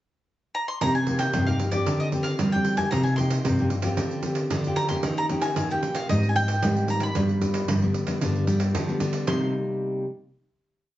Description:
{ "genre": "samba and choro", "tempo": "114 BPM", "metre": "4/4", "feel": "straight", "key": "C minor", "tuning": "A4 = 440 Hz", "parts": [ { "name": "bowl-back mandolin", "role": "melody", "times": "0.5-9.5 s", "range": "D5 to C6", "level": "-28 LUFS", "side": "equal", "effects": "plate reverb" }, { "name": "nylon-string guitar", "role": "accompaniment", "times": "0.8-10.0 s", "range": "G2 to G4", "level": "-27 LUFS", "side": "left 1 dB", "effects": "none" }, { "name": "nylon-string guitar", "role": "bass", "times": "0.8-9.5 s", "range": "G2 to G3", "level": "-26 LUFS", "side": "equal", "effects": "none" }, { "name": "pandeiro", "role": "percussion", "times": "0.8-9.4 s", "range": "none", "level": "-30 LUFS", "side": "right 3 dB", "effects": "none" } ], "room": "wet studio reverb, RT60 0.6 s", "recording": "heard from further back in the room, nothing above 8.0 kHz", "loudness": "-22 LUFS", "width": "side -14 dB against mid", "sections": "0.0-0.8 pickup bar; 0.8-9.3 groove; 9.3-11.0 final chord", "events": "none", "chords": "0.0 N.C.; 0.8 Cm7; 1.9 Gsus4/D; 2.9 Cm7; 4.0 G7sus4/D; 5.0 Eb7; 6.1 Abmaj7; 7.2 G; 9.3 Cm7" }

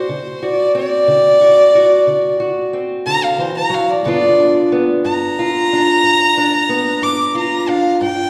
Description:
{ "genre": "acoustic country blues, solo or duo", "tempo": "61 BPM (dotted quarters)", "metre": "12/8", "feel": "straight", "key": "G mixolydian", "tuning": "A4 = 438 Hz", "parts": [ { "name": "dark fiddle", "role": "melody", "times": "0.0-8.3 s", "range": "C5 to D6", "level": "-16 LUFS", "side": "equal", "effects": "none" }, { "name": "fingerpicked steel-string acoustic guitar", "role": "accompaniment", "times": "0.0-8.3 s", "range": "G2 to F#4", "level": "-20 LUFS", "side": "equal", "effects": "none" } ], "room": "wet recital hall reverb, RT60 1.9 s", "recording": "recorded in a church or concert hall", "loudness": "-14 LUFS", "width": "mono", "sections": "0.0-8.3 A section", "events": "fiddle solo 0.0-8.3", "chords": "0.0 D7; 4.0 G7" }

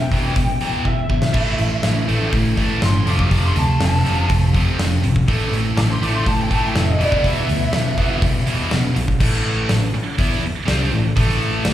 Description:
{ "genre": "hard rock", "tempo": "122 BPM", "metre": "4/4", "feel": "straight", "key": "A minor", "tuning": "A4 = 440 Hz", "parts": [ { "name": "lead guitar through a small cranked amp", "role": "melody", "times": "0.0-8.2 s", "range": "D5 to D6", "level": "-24 LUFS", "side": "right 1 dB", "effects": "overdrive, slapback echo" }, { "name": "biting overdriven guitar", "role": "riff", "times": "0.0-11.7 s", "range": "E2 to E4", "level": "-24 LUFS", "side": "left 6 dB", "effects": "none" }, { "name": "scooped high-gain guitar", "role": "riff", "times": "0.0-11.7 s", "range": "E2 to E4", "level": "-24 LUFS", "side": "right 7 dB", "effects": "distortion" }, { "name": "vintage muted picked electric bass", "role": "bass", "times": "0.0-11.7 s", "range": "E1 to A2", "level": "-20 LUFS", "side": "equal", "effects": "none" }, { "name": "huge arena drum kit", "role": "drums", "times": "0.0-11.7 s", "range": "crash cymbal, hi-hat, kick drum, snare drum", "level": "-22 LUFS", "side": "equal", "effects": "none" }, { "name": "heavy high-gain guitar", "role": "riff", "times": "1.3-9.0 s", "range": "A2 to F4", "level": "-27 LUFS", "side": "equal", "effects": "distortion" } ], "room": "light reverb, studio reverb", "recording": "live gig heard through the venue's PA, club reverb", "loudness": "-16 LUFS", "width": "side -12 dB against mid", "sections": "0.0-9.2 A section; 9.2-11.7 B section", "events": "lead electric guitar solo 0.0-9.2; drum fill 0.9-1.4", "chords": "0.0 Em; 1.4 Am; 3.1 F; 5.3 Am; 7.0 Em; 9.2 Am" }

